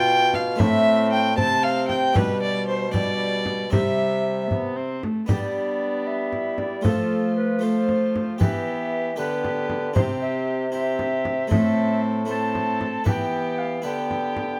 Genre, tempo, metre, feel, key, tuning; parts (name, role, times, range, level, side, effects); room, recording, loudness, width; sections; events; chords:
classical, renaissance-style consort dance; 77 BPM (dotted quarters); 6/8; straight; A4 = 440 Hz
mellow alto recorder; melody; 0.0-14.6 s; A4 to A5; -31 LUFS; equal
warm violin; second line; 0.0-14.6 s; D4 to A5; -29 LUFS; equal
harpsichord; accompaniment; 0.0-14.6 s; A2 to C5; -31 LUFS; equal
warm viola; accompaniment; 0.0-14.6 s; G3 to F4; -32 LUFS; equal
warm bassoon; bass; 0.0-14.6 s; A2 to G3; -30 LUFS; equal
frame drum; percussion; 0.3-14.6 s; -27 LUFS; equal
moderate stone room reverb, RT60 1.0 s; close, detailed microphones; -23 LUFS; mono
0.0-5.3 A section; 5.3-14.6 B section
0.0 Dm; 0.6 Am; 2.1 G/B; 3.7 C; 5.3 G; 6.8 F; 8.4 Em; 10.0 C; 11.5 Am; 13.1 Em